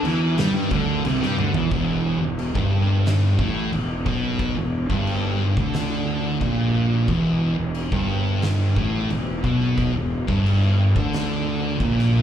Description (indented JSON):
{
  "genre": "stoner and doom metal",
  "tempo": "89 BPM",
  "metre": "4/4",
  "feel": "straight",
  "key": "E minor",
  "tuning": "A4 = 438 Hz",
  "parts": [
    { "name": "thick fuzz guitar", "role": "riff", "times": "0.0-12.2 s", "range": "E2 to G3", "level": "-24 LUFS", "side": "left 5 dB", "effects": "distortion" },
    { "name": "thick fuzz guitar", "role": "riff", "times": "0.0-12.2 s", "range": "E2 to G3", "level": "-23 LUFS", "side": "right 5 dB", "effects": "distortion" },
    { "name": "fuzz fingered electric bass", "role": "bass", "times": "0.0-12.2 s", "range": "E1 to G2", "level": "-26 LUFS", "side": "equal", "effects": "overdrive, tube saturation" },
    { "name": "oversized low-tuned drum kit", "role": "drums", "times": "0.0-12.1 s", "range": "crash cymbal, kick drum, snare drum, toms", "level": "-28 LUFS", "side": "equal", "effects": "none" }
  ],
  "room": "small room ambience",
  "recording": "live gig heard through the venue's PA, club reverb",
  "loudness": "-19 LUFS",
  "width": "side -9 dB against mid",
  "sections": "0.0-1.7 A section; 1.7-12.2 B section",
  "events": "drum fill 1.4-1.7",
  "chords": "0.0 Cadd9; 1.7 Em"
}